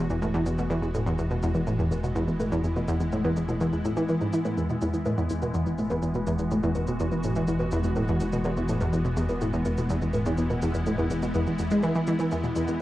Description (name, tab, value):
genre	ambient, sequencer-driven space music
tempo	124 BPM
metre	4/4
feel	straight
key	E major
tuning	A4 = 440 Hz
part	evolving wavetable pad	sustained chords	0.0-12.8 s	E3 to F#4	-31 LUFS	equal	ensemble chorus, built-in reverb
part	analog pluck	riff	0.0-12.7 s	E2 to G#3	-26 LUFS	equal	chorus, tape echo
part	round analog bass	bass	0.0-12.8 s	E1	-35 LUFS	equal	none
part	cabasa and bongos	percussion	0.1-12.8 s	none	-37 LUFS	right 1 dB	cassette tape, tape echo
room	wet studio reverb, RT60 0.5 s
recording	home recording on cassette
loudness	-24 LUFS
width	side -15 dB against mid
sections	0.0-12.8 A section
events	fade-in on ambient pad 0.0-12.8; fade-in on drum 0.0-12.8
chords	0.0 Eadd9